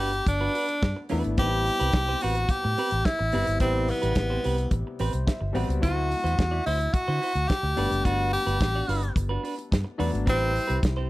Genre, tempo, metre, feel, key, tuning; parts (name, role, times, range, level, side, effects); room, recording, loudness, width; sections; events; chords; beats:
disco; 108 BPM; 4/4; straight; A dorian; A4 = 435 Hz
edgy tenor saxophone; melody; 0.0-10.8 s; B3 to G4; -26 LUFS; equal
clean electric guitar; accompaniment; 0.0-11.1 s; C4 to D5; -34 LUFS; right 4 dB
warm grand piano; accompaniment; 0.0-11.1 s; C3 to F#5; -34 LUFS; left 3 dB
vintage muted fingered electric bass; bass; 0.0-11.1 s; F#1 to D3; -28 LUFS; equal
damped 70s drum kit; drums; 0.1-11.0 s; hi-hat, kick drum, snare drum; -27 LUFS; equal
light reverb, small room ambience; -23 LUFS; side -18 dB against mid
0.0-11.1 A section
grand piano fill 4.7-5.8
0.0 Gmaj7; 1.4 Am9; 5.8 D9; 7.8 Gmaj7; 10.3 Am9
0.27 0.83 | 1.38 1.94 2.49 3.05 | 3.61 4.16 4.72 5.27 | 5.83 6.39 6.94 7.50 | 8.05 8.61 9.16 9.72 | 10.28 10.83